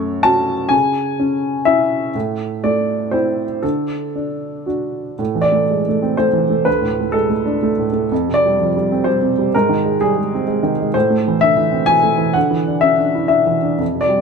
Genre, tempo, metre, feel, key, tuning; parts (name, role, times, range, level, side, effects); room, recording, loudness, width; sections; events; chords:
neoclassical minimalist piano; 125 BPM; 3/4; rubato; A4 = 439 Hz
warm upright piano; solo; 0.0-14.2 s; D2 to A5; -15 LUFS; equal
light reverb; -15 LUFS; side -5 dB against mid
0.0-5.2 A section; 5.2-14.2 B section
0.0 F#m; 0.7 C#m; 2.1 Am; 3.6 D; 5.2 Am; 6.7 D5; 8.1 Fsus2; 9.5 G#; 10.9 Am; 12.4 Dsus2